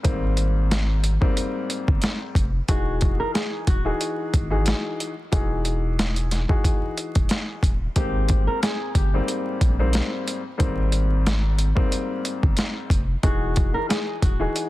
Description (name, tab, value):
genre	hip hop, boom-bap hip-hop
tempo	91 BPM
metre	4/4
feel	swing 55% on 16ths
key	unclear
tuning	A4 = 440 Hz
part	dark upright piano	accompaniment	0.0-14.7 s	Ab2 to G#4	-28 LUFS	left 2 dB	high-pass filter, low-pass filter
part	dusty soul sampler-style drum kit	drums	0.0-14.7 s	hi-hat, kick drum, snare drum	-22 LUFS	equal	overdrive
part	saturated sub bass	bass	0.1-14.5 s	D#1 to Bb1	-23 LUFS	equal	none
part	flamenco guitar	melody	2.7-14.7 s	F#4 to Bb4	-30 LUFS	equal	high-pass filter, low-pass filter, tape echo
room	small room ambience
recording	dense, heavily limited modern master, vinyl crackle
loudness	-20 LUFS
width	side -17 dB against mid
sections	0.0-14.7 A section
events	none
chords	0.0 Abmaj9; 2.7 Emaj9; 8.0 Abmaj9; 13.2 Emaj9